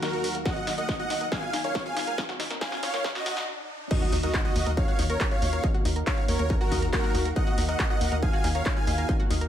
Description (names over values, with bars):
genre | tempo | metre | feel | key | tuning
uplifting trance | 139 BPM | 4/4 | straight | Eb minor | A4 = 440 Hz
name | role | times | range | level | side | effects
dense compressed supersaw | melody | 0.0-9.1 s | Gb4 to Ab5 | -30 LUFS | equal | cassette tape, sidechain pumping, tape echo
lush unison pad | sustained chords | 0.0-9.5 s | Eb2 to F5 | -38 LUFS | left 2 dB | chorus, vintage 12-bit sampler grit, sidechain pumping
analog pluck | arpeggios | 0.0-9.5 s | Eb4 to Gb5 | -36 LUFS | left 3 dB | chorus, sidechain pumping, tape echo
punchy analog drum machine | drums | 0.0-9.5 s | crash cymbal, handclaps, hi-hat, snare drum | -33 LUFS | equal | sidechain pumping on hats, high-pass filter on hats, high-pass filter on snare, sidechain pumping on cymbals, high-pass filter on cymbals, high-pass filter on room
riser and impact | sound effects | 0.3-5.6 s | none | -39 LUFS | right 1 dB | none
electronic kick drum | drums | 0.5-9.2 s | none | -28 LUFS | equal | distortion
tight sequencer bass | bass | 4.1-9.5 s | Eb2 | -28 LUFS | equal | sidechain pumping
room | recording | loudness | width
light reverb, digital ambience | high-pass filter | -24 LUFS | side -10 dB against mid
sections
0.0-3.9 A section; 3.9-9.5 B section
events
build-up 0.0-3.9; drum fill 0.0-3.5; filter sweep on synth arpeggio sound 0.0-3.9; filter sweep 0.0-3.9; riser 0.3-3.9; stop 3.5-3.9; drop 3.9-9.5; impact 3.9-5.6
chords
0.0 Ebmadd9